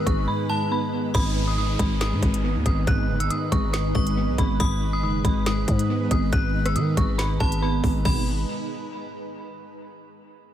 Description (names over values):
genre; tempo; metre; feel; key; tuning
hip hop, drill; 139 BPM; 4/4; half-time; G# minor; A4 = 440 Hz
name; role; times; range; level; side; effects
dark detuned synth bell; melody; 0.0-8.3 s; A5 to F#6; -30 LUFS; equal; chorus, dub echo
warbly lo-fi synth keys; accompaniment; 0.0-8.3 s; G#2 to B3; -27 LUFS; equal; chorus, dub echo
granular cloud pad; sustained chords; 0.0-8.3 s; G#3 to B4; -32 LUFS; equal; built-in reverb
growling 808-style bass; bass; 0.0-8.5 s; F#1 to D#3; -25 LUFS; equal; none
drill drum kit; drums; 0.1-8.2 s; crash cymbal, hi-hat, kick drum, rim click, snare drum; -25 LUFS; equal; none
metallic FM bell; second line; 0.5-8.3 s; B5 to D#6; -38 LUFS; equal; chorus, phaser, dub echo
downlifter; sound effects; 1.1-4.6 s; none; -36 LUFS; equal; none
room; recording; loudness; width
little or no reverb; echo-heavy mix; -21 LUFS; side -11 dB against mid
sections
0.0-1.1 A section; 1.1-8.1 B section; 8.1-9.8 C section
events
break 0.3-1.1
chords
0.0 G#m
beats
0.28 0.71 | 1.15 1.58 2.01 2.44 | 2.87 3.30 3.74 4.17 | 4.60 5.03 5.46 5.89 | 6.33 6.76 7.19 7.62 | 8.05